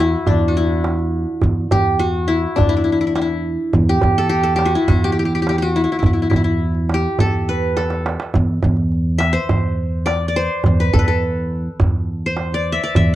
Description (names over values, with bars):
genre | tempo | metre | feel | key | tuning
Turkish makam ensemble | 104 BPM | 4/4 | straight | E makam ussak | A4 = 439 Hz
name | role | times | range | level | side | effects
qanun | melody | 0.0-13.2 s | D4 to E5 | -19 LUFS | left 1 dB | none
upright bass | bass | 0.0-13.2 s | E2 | -19 LUFS | equal | none
darbuka | percussion | 0.3-13.1 s | none | -20 LUFS | right 2 dB | none
room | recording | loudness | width
little or no reverb | dry, close 1970s-style studio recording | -15 LUFS | side -14 dB against mid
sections
0.0-13.2 A section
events
drum fill 7.8-8.3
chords
none